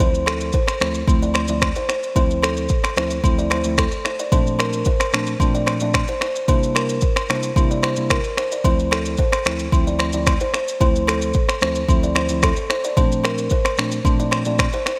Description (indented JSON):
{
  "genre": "afrobeats",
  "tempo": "111 BPM",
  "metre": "4/4",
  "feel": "straight",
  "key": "D minor",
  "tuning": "A4 = 441 Hz",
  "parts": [
    { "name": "mellow tine electric piano", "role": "accompaniment", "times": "0.0-14.7 s", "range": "D2 to E4", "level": "-25 LUFS", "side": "equal", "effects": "lush chorus" },
    { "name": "kalimba", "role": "riff", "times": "0.0-15.0 s", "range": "A4 to D5", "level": "-27 LUFS", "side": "equal", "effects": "digital delay" },
    { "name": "afro-pop drum kit", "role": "drums", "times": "0.0-15.0 s", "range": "finger snaps, kick drum, rim click, shaker", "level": "-22 LUFS", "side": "equal", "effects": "none" },
    { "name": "agogo bells", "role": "percussion", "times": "0.0-14.7 s", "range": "none", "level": "-31 LUFS", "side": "equal", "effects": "none" }
  ],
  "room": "light reverb, small room ambience",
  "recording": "bright 1980s-style digital production",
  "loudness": "-19 LUFS",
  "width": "mono",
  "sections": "0.0-15.0 A section",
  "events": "none",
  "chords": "0.0 Dm9; 4.3 Bbmaj7; 6.5 C7; 8.6 Dm9; 13.0 Bbmaj7"
}